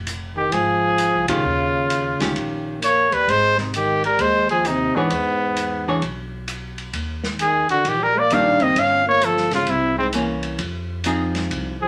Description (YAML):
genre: jazz, small-group swing and bop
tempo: 131 BPM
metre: 4/4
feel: swing 65% on 8ths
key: unclear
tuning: A4 = 440 Hz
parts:
  - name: upright bass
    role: bass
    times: 0.0-11.9 s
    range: F1 to F2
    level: -33 LUFS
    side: equal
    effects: none
  - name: open jazz drum kit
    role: drums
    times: 0.1-11.6 s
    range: hi-hat, kick drum, ride cymbal, snare drum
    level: -33 LUFS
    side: equal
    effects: none
  - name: bright trumpet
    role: melody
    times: 0.4-11.9 s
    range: B3 to F5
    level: -21 LUFS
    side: equal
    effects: none
  - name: breathy trombone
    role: second line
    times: 0.4-11.9 s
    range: Ab2 to D4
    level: -26 LUFS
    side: equal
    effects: none
  - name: archtop guitar, miked and amplified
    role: accompaniment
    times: 1.3-11.8 s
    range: Eb3 to Db5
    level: -26 LUFS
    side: equal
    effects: none
room: moderate club reverb, RT60 0.6 s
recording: none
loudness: -20 LUFS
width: mono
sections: 0.0-11.9 A section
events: band accent 1.2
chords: 0.0 Fm; 1.4 Eb9; 3.3 Ab5; 5.1 E; 6.9 Ebmaj7; 8.8 G7(b5, no3); 9.7 C7b9; 10.6 Fm7